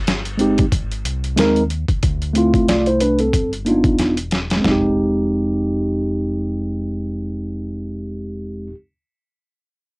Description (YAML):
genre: hip hop, jazz-hop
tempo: 92 BPM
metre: 4/4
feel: swing 57% on 16ths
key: F dorian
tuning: A4 = 440 Hz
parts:
  - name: deep dub fingered electric bass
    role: bass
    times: 0.1-8.7 s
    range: E1 to Eb2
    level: -25 LUFS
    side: equal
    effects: none
  - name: boom bap sampler-style drum kit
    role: drums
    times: 0.1-4.8 s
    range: hi-hat, kick drum, snare drum, toms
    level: -19 LUFS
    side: equal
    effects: overdrive, cassette tape
  - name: mellow tine electric piano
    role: accompaniment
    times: 0.4-8.7 s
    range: Ab3 to D5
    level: -18 LUFS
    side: equal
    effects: cassette tape
room: moderate booth ambience, RT60 0.2 s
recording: home recording on cassette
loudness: -16 LUFS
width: side -28 dB against mid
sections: 0.0-4.6 A section; 4.6-7.2 B section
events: drum fill 4.0-4.6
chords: 0.0 Fm7 (rootless); 2.0 Dm9; 3.3 G7b13; 4.6 Fm7